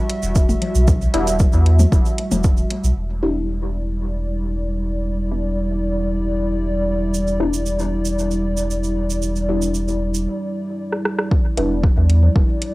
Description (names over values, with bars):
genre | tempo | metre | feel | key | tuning
dub techno | 115 BPM | 4/4 | straight | E minor | A4 = 435 Hz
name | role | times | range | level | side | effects
dark analog pad | sustained chords | 0.0-12.7 s | G3 to E5 | -24 LUFS | equal | chorus, sidechain pumping, cassette tape
deep house drum kit | drums | 0.1-2.8, 10.9-12.7 s | hi-hat, rim click | -24 LUFS | equal | overdrive, low-pass filter on hats, studio reverb, cassette tape, low-pass filter on snare
warm sub bass | bass | 0.2-12.4 s | E1 to E2 | -20 LUFS | equal | sidechain pumping
cabasa | percussion | 0.2-2.9, 7.1-10.2 s | none | -31 LUFS | right 7 dB | none
electronic kick drum | drums | 0.4-2.5, 11.3-12.5 s | none | -17 LUFS | equal | overdrive, studio reverb, cassette tape
electronic toms and congas | percussion | 0.5-2.4, 12.2-12.3 s | none | -25 LUFS | left 2 dB | sidechain pumping on perc, studio reverb, cassette tape, sidechain pumping on toms, dub echo
filtered dub chord stab | stabs | 1.1-11.8 s | G3 to E4 | -25 LUFS | left 1 dB | phaser, sidechain pumping, cassette tape, dub echo
room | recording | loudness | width
light reverb | home recording on cassette | -17 LUFS | side -20 dB against mid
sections
0.0-3.0 A section; 3.0-11.3 B section; 11.3-12.7 A section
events
break 10.3-11.3; drum fill 10.9-11.3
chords
0.0 Em; 3.0 Em7